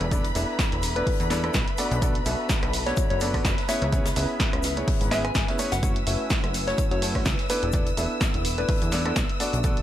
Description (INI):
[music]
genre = piano house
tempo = 126 BPM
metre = 4/4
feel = swing 55% on 16ths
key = unclear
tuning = A4 = 439 Hz
[part]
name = soft struck synth lead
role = melody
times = 0.0-9.2 s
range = B4 to G#5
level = -32 LUFS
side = left 3 dB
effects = chorus, tremolo, tape echo
[part]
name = warm symphonic violin section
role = sustained chords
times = 0.0-9.8 s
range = B5 to E6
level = -35 LUFS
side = left 2 dB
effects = sidechain pumping
[part]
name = warm grand piano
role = riff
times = 0.0-9.7 s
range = A3 to E5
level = -30 LUFS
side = equal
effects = sidechain pumping, tape echo
[part]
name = plucky analog bass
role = bass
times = 0.0-9.8 s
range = E1 to F#2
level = -29 LUFS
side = equal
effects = sidechain pumping
[part]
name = punchy analog drum machine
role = drums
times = 0.0-9.8 s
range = hi-hat, rim click, snare drum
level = -30 LUFS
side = right 1 dB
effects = none
[part]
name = granular cloud pad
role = texture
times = 0.0-9.8 s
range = B4 to A5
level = -36 LUFS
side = equal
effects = built-in reverb, sidechain pumping
[part]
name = big rock drum kit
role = drums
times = 0.1-9.8 s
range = hi-hat, shaker, snare drum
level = -37 LUFS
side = left 4 dB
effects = sidechain pumping on hats, high-pass filter on hats, high-pass filter on snare, sidechain pumping on perc, high-pass filter on perc, high-pass filter on room
[part]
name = electronic kick drum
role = drums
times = 0.1-9.7 s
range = none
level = -26 LUFS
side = equal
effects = none
[sound]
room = small room ambience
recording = none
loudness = -22 LUFS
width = side -12 dB against mid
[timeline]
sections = 0.0-9.8 A section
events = none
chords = 0.0 E7sus4; 1.8 Bm7; 3.7 C#m7; 5.8 F#m7; 7.5 E7sus4